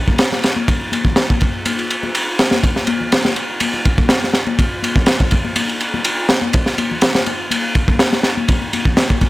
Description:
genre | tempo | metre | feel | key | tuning
breakbeat | 123 BPM | 4/4 | straight | none | none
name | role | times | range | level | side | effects
crunchy breakbeat drum kit | drums | 0.1-9.3 s | kick drum, ride cymbal, snare drum | -14 LUFS | equal | none
congas | percussion | 0.1-9.2 s | none | -24 LUFS | left 5 dB | none
room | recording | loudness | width
studio reverb | none | -14 LUFS | side -18 dB against mid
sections
0.0-9.3 A section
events
none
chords
none

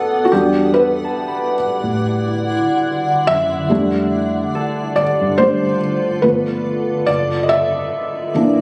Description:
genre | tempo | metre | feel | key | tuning
R&B | 71 BPM | 4/4 | swing 58% on 16ths | E minor | A4 = 440 Hz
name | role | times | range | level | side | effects
felt-muted upright piano | accompaniment | 0.0-8.6 s | E3 to E5 | -19 LUFS | equal | none
granular cloud pad | sustained chords | 0.0-8.6 s | D3 to F#5 | -24 LUFS | equal | built-in reverb
vintage muted fingered electric bass | bass | 0.3-8.4 s | F#1 to A2 | -26 LUFS | equal | none
concert harp | texture | 0.7-6.7 s | A4 to B5 | -34 LUFS | equal | digital delay
room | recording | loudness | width
moderate lush hall reverb, RT60 2.3 s | recorded on a phone in the room, club reverb, compression | -17 LUFS | mono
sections
0.0-8.6 A section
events
felt piano solo 0.0-8.6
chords
0.3 Em9; 3.7 F69; 6.2 G9; 7.1 F#7b13

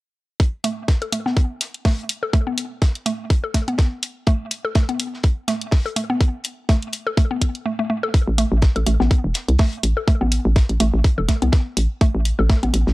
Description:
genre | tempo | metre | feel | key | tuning
minimal techno | 124 BPM | 4/4 | swing 56% on 16ths | A minor | A4 = 440 Hz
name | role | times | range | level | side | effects
electronic kick drum | drums | 0.4-12.6 s | none | -16 LUFS | equal | none
warm soul drum kit | drums | 0.4-12.9 s | hi-hat, snare drum | -34 LUFS | left 2 dB | sidechain pumping on hats, high-pass filter on hats, high-pass filter on snare, high-pass filter on room
mallet-like synth pluck | riff | 0.6-12.7 s | A3 to A4 | -24 LUFS | equal | chorus, sidechain pumping, tape echo
electronic hi-hat | drums | 0.6-12.8 s | none | -24 LUFS | equal | none
hollow knocking FM bass | bass | 8.3-12.9 s | E1 to C2 | -18 LUFS | equal | sidechain pumping
room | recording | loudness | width
small room ambience | dry, gritty hardware recording, cassette tape | -18 LUFS | side -20 dB against mid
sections
0.4-8.1 A section; 8.1-12.9 B section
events
filter sweep on synth arpeggio sound 0.4-8.1; break 7.7-8.1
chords
0.4 Asus2; 8.1 A5

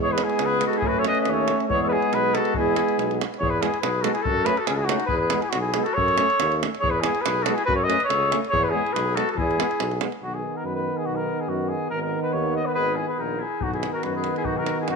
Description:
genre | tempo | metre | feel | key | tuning
balkan folk, Balkan brass band | 141 BPM | 2/4 | straight | E major, B major from 10.2 s | A4 = 441 Hz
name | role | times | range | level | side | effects
mellow trumpet | melody | 0.0-15.0 s | F#4 to D#5 | -24 LUFS | equal | none
clear clarinet | second line | 0.0-10.0, 12.8-15.0 s | B3 to B4 | -29 LUFS | left 9 dB | none
mellow euphonium | accompaniment | 0.0-15.0 s | D#3 to A3 | -29 LUFS | right 11 dB | none
warm trombone | accompaniment | 0.0-15.0 s | B3 to C#4 | -31 LUFS | left 12 dB | none
warm tuba | bass | 0.0-15.0 s | G#1 to F#2 | -29 LUFS | equal | none
davul | percussion | 0.2-10.2, 13.6-15.0 s | none | -30 LUFS | right 2 dB | none
room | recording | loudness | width
moderate echo chamber reverb, RT60 1.9 s, small room ambience | 1960s-style stereo with parts hard left and right | -21 LUFS | side -4 dB against mid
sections
0.0-3.4 A section; 3.4-10.2 A section; 10.2-15.0 B section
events
none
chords
0.0 E; 0.8 F#m; 1.7 E; 4.3 F#m; 5.1 E; 6.0 F#m; 6.8 E; 7.7 F#m; 8.5 E; 10.2 B; 11.9 G#m; 13.6 B

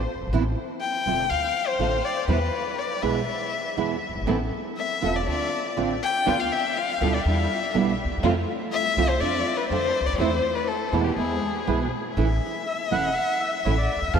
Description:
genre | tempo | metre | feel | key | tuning
tango | 122 BPM | 4/4 | rubato | unclear | A4 = 439 Hz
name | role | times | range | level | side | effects
warm violin | second line | 0.0-14.2 s | G4 to A5 | -26 LUFS | left 5 dB | ping-pong delay
upright bass | bass | 0.0-14.2 s | E1 to F2 | -27 LUFS | equal | none
nylon-string guitar | accompaniment | 0.3-14.2 s | B2 to F4 | -28 LUFS | right 7 dB | ensemble chorus
dark symphonic string section | stabs | 4.3-11.9 s | G3 to A4 | -30 LUFS | equal | ping-pong delay
bandoneon | melody | 12.7-14.2 s | C#5 to F#5 | -26 LUFS | right 1 dB | ping-pong delay
room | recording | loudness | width
wet huge ambient reverb, RT60 6.7 s | dreamy mix soaked in reverb | -22 LUFS | side -7 dB against mid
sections
0.0-12.2 A section; 12.2-14.2 B section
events
violin solo 0.0-12.2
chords
0.3 Am; 1.3 Dm7; 2.3 E; 4.3 Amadd9; 5.3 Dm7; 6.3 Bdim/D; 7.2 Em7; 8.2 Fmaj7; 9.2 Dm7/F; 10.2 Am/E; 11.2 E; 12.2 A

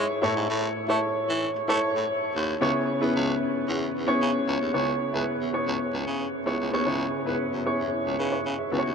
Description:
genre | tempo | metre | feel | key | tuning
1980s-style pop | 113 BPM | 4/4 | straight | unclear | A4 = 439 Hz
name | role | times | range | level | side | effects
warm grand piano | accompaniment | 0.0-8.9 s | G#2 to E5 | -25 LUFS | equal | none
breathy baritone saxophone | bass | 0.0-8.9 s | C#2 to A3 | -30 LUFS | right 1 dB | none
room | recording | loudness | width
wet huge ambient reverb, RT60 7.9 s | dreamy mix soaked in reverb | -24 LUFS | side -6 dB against mid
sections
0.0-4.7 A section; 4.7-8.9 B section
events
none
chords
0.2 A; 2.6 C#m7

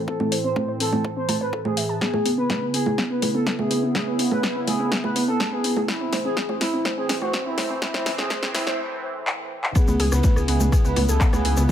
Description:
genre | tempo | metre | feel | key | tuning
melodic techno | 124 BPM | 4/4 | straight | C# minor | A4 = 439 Hz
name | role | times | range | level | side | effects
sweeping resonant pad | sustained chords | 0.0-11.7 s | A2 to E4 | -31 LUFS | equal | chorus, sidechain pumping
expressive synth lead | melody | 0.1-11.7 s | E4 to C5 | -27 LUFS | equal | wide subtle chorus, sidechain pumping, digital delay
warbly dusty pluck | arpeggios | 0.1-11.7 s | B3 to A5 | -27 LUFS | right 1 dB | chorus, sidechain pumping, digital delay
electronic kick drum | drums | 0.1-11.7 s | none | -20 LUFS | left 1 dB | high-pass filter on kick, small room ambience
house drum kit | drums | 0.2-11.7 s | congas, handclaps, hi-hat, rim click, snare drum | -25 LUFS | right 1 dB | sidechain pumping on perc, small room ambience, sidechain pumping on hats
cloth-damped thuddy drum kit | drums | 9.8-11.7 s | ride cymbal, snare drum | -39 LUFS | right 2 dB | sidechain pumping on cymbals, high-pass filter on cymbals, low-pass filter on cymbals, small room ambience, high-pass filter on snare, low-pass filter on snare, high-pass filter on room, low-pass filter on room
tube shaker | percussion | 9.8-11.7 s | none | -34 LUFS | left 5 dB | none
dark detuned saw bass | bass | 9.9-11.7 s | C#2 | -22 LUFS | left 1 dB | sidechain pumping
room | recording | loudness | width
moderate lush hall reverb, RT60 1.6 s, small room ambience | high-pass filter | -20 LUFS | side -10 dB against mid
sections
0.0-9.8 A section; 9.8-11.7 B section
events
build-up 0.0-9.8; filter sweep on synth arpeggio sound 0.0-9.8; filter sweep on analog synth pad 0.0-9.8; filter sweep 0.0-9.8; drum fill 2.0-8.8, 9.3-9.8; break 8.8-9.8; drop 9.8-11.7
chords
0.0 Am; 2.0 C#m7; 5.9 Am; 9.8 C#m7

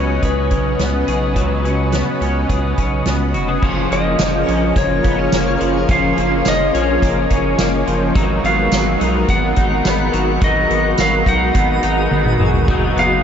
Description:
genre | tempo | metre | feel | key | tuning
dream pop | 106 BPM | 4/4 | straight | F# major | A4 = 439 Hz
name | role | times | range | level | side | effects
clean lap steel guitar | melody | 0.0-13.2 s | B4 to F#5 | -20 LUFS | left 1 dB | analog delay
ensemble organ-string | sustained chords | 0.0-13.2 s | C#3 to F#5 | -21 LUFS | right 1 dB | ensemble chorus
electric guitar at the edge of break-up | arpeggios | 0.0-13.2 s | E#3 to G#4 | -21 LUFS | left 2 dB | analog chorus, analog delay
saturated sub bass | bass | 0.0-13.2 s | E#1 to C#2 | -21 LUFS | equal | none
soft-mallet drum kit | drums | 0.2-13.1 s | crash cymbal, hi-hat, kick drum, snare drum, tambourine, toms | -20 LUFS | equal | none
twinkling granular texture | texture | 4.4-12.9 s | G#4 to G#5 | -32 LUFS | equal | none
room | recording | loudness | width
wet huge ambient reverb, RT60 8.9 s | dreamy mix soaked in reverb, nothing above 7.7 kHz | -14 LUFS | side -8 dB against mid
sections
0.0-3.6 A section; 3.6-13.2 B section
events
drum fill 12.1-12.7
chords
0.0 C#7sus4; 3.6 F#maj7; 8.2 G#m7; 12.7 B/F#

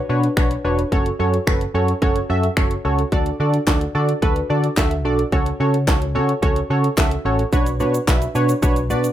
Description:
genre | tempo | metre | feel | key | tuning
dance-pop | 109 BPM | 4/4 | straight | F# minor | A4 = 440 Hz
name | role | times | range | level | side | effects
funky polysynth comp | accompaniment | 0.1-9.1 s | C#4 to E5 | -20 LUFS | right 1 dB | chorus, sidechain pumping, plate reverb
vintage muted fingered electric bass | bass | 0.1-9.1 s | E1 to D3 | -22 LUFS | equal | sidechain pumping
house drum kit | drums | 0.2-9.1 s | finger snaps, handclaps, hi-hat, kick drum, shaker, snare drum | -19 LUFS | equal | none
room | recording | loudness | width
moderate studio reverb, RT60 0.6 s | rough home demo mix | -16 LUFS | side -11 dB against mid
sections
0.0-9.1 A section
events
none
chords
0.0 Bmadd9; 0.9 F#m; 3.1 D; 5.3 F#m/C#; 7.5 Bmadd9

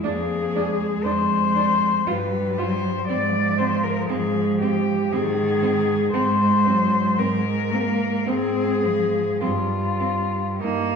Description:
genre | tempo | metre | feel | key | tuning
classical, lyrical piece for cello ensemble | 50-60 BPM | 3/4 | rubato | unclear | A4 = 439 Hz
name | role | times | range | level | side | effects
muted cello | melody | 0.0-11.0 s | Eb4 to D5 | -23 LUFS | left 5 dB | none
muted cello | second line | 0.0-11.0 s | Bb3 to F4 | -30 LUFS | right 5 dB | none
muted cello | accompaniment | 0.0-11.0 s | Eb3 to C4 | -26 LUFS | equal | none
muted cello | bass | 0.0-11.0 s | F2 to Ab2 | -25 LUFS | right 4 dB | none
room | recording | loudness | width
wet scoring stage reverb, RT60 1.6 s | heard from further back in the room | -19 LUFS | side -6 dB against mid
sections
0.0-11.0 A section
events
none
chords
0.0 Ddim/F (rootless); 2.1 G; 3.1 Ab; 9.4 Cm/G (rootless)

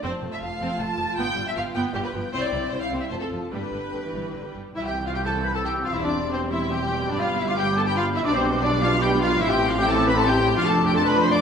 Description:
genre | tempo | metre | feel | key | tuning
quick classical-period movement for symphony orchestra | 155 BPM | 3/4 | rubato | C major | A4 = 440 Hz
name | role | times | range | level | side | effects
dark studio violin section | melody | 0.0-11.4 s | C5 to D6 | -29 LUFS | left 5 dB | none
mellow hollow silver concert flute | second line | 0.0-11.4 s | G4 to G6 | -31 LUFS | left 1 dB | none
rich studio violin section | second line | 0.0-11.4 s | C4 to A5 | -30 LUFS | left 2 dB | none
rich studio viola section | accompaniment | 0.0-11.4 s | D3 to F4 | -32 LUFS | right 1 dB | none
dark French horn section | sustained chords | 0.0-11.4 s | A3 to G4 | -29 LUFS | left 1 dB | none
clear symphonic double bass section | bass | 0.0-11.4 s | E1 to C2 | -31 LUFS | right 2 dB | none
rich studio cello section | bass | 0.0-11.4 s | C2 to C3 | -31 LUFS | right 2 dB | none
clear clarinet | second line | 4.8-11.4 s | C4 to D5 | -29 LUFS | equal | none
warm trumpet section | stabs | 4.8-11.4 s | C5 to D6 | -29 LUFS | right 1 dB | none
room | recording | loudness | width
wet scoring stage reverb, RT60 1.6 s | minimal, uncompressed stereo recording | -21 LUFS | side -7 dB against mid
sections
0.0-4.8 A section; 4.8-11.4 B section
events
none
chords
0.0 F; 1.2 G7; 2.3 C; 3.1 F; 3.5 G; 4.8 C; 5.9 C/E; 7.1 G; 8.3 G/B; 9.4 Am; 10.6 Dm/F

